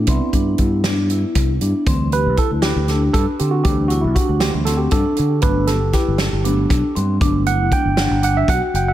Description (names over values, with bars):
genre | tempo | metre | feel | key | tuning
progressive instrumental, band music in an uneven meter | 236 BPM (eighths) | 7/8 | straight | unclear | A4 = 439 Hz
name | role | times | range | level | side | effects
bright tine electric piano | accompaniment | 0.0-8.9 s | E3 to G5 | -22 LUFS | right 5 dB | auto-pan, dub echo
vibraphone with soft mallets | arpeggios | 0.0-8.9 s | C4 to G4 | -23 LUFS | left 3 dB | none
fingered electric bass | bass | 0.0-8.9 s | F#1 to D3 | -19 LUFS | equal | none
natural country drum kit | drums | 0.1-8.9 s | hi-hat, kick drum, snare drum | -20 LUFS | equal | none
room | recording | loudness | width
light reverb, small room ambience | echo-heavy mix | -15 LUFS | side -12 dB against mid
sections
0.0-1.9 A section; 1.9-8.9 B section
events
tine electric piano solo 1.9-8.9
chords
0.1 Cmaj7; 1.9 D7sus4; 5.4 Gmaj7